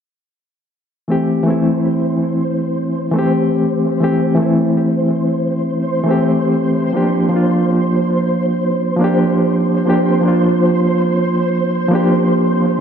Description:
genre	trip hop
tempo	82 BPM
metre	4/4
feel	swing 60% on 16ths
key	A phrygian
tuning	A4 = 441 Hz
part	barky reed electric piano	accompaniment	1.1-12.8 s	E3 to G4	-14 LUFS	equal	overdrive, fast tremolo, tape echo
part	flickering grainy texture	texture	1.6-12.8 s	C5	-21 LUFS	equal	built-in reverb, ensemble chorus
room	wet lush hall reverb, RT60 1.7 s, digital ambience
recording	dreamy mix soaked in reverb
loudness	-13 LUFS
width	side -8 dB against mid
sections	1.1-12.8 A section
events	none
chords	1.1 Am7; 6.9 Gm7

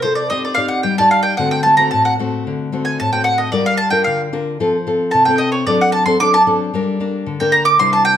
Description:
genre	samba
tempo	112 BPM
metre	4/4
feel	straight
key	G minor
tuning	A4 = 439 Hz
part	mandolin	melody	0.0-8.2 s	C5 to D6	-14 LUFS	right 1 dB	plate reverb
part	nylon-string guitar	accompaniment	0.0-8.2 s	A2 to D5	-18 LUFS	left 3 dB	none
room	wet large studio reverb, RT60 1.1 s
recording	none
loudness	-13 LUFS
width	side -10 dB against mid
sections	0.0-8.2 A section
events	mandolin solo 0.0-8.2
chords	0.3 Cmadd9; 1.4 D7; 3.5 Gm7; 4.6 F; 5.7 D7/F#; 6.7 Gm

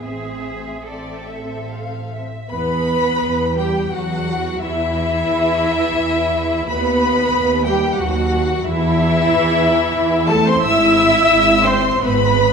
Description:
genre	classical, slow romantic movement for string orchestra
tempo	70-94 BPM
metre	3/4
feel	rubato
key	E minor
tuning	A4 = 440 Hz
part	muted chamber violin section	melody	0.0-12.5 s	E5 to E6	-20 LUFS	left 5 dB	none
part	muted symphonic violin section	second line	0.0-12.5 s	E4 to F5	-22 LUFS	left 1 dB	none
part	muted symphonic viola section	accompaniment	0.0-12.5 s	C4 to E5	-22 LUFS	right 2 dB	none
part	muted symphonic cello section	bass	0.0-12.5 s	E3 to A4	-22 LUFS	right 1 dB	none
part	muted symphonic double bass section	bass	0.0-12.5 s	G#1 to E2	-22 LUFS	right 3 dB	none
room	wet scoring stage reverb, RT60 2.0 s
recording	minimal, uncompressed stereo recording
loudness	-14 LUFS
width	side -6 dB against mid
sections	0.0-2.5 A section; 2.5-12.5 B section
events	none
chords	0.0 Am; 2.5 Em; 4.6 N.C.; 6.7 B/D#; 8.7 Am/E; 10.6 E/G#

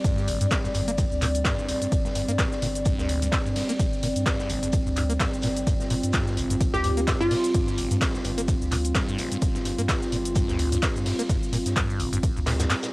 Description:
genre	acid house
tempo	128 BPM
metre	4/4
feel	swing 56% on 16ths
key	unclear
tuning	A4 = 439 Hz
part	dark analog pad	sustained chords	0.0-12.9 s	G3 to D5	-29 LUFS	equal	chorus, sidechain pumping, cassette tape
part	liquid acid bass	riff	0.0-12.7 s	G1 to Bb3	-30 LUFS	equal	phaser, overdrive, sidechain pumping, cassette tape, analog delay
part	saturated sub bass	bass	0.0-12.7 s	G1 to G2	-29 LUFS	equal	sidechain pumping
part	electronic kick drum	drums	0.0-12.3 s	none	-26 LUFS	equal	none
part	punchy analog drum machine	drums	0.0-12.9 s	handclaps, hi-hat, ride cymbal, shaker	-31 LUFS	equal	none
part	raw garage drum kit	drums	0.0-12.9 s	hi-hat, shaker, snare drum	-36 LUFS	equal	high-pass filter on hats, high-pass filter on snare, high-pass filter on perc, high-pass filter on room
part	hollow square pluck	melody	6.7-7.5 s	F4 to G4	-28 LUFS	equal	wide subtle chorus, cassette tape, tape echo
room	moderate booth ambience, RT60 0.2 s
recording	home recording on cassette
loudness	-22 LUFS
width	side -22 dB against mid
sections	0.0-12.9 A section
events	none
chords	0.0 G5

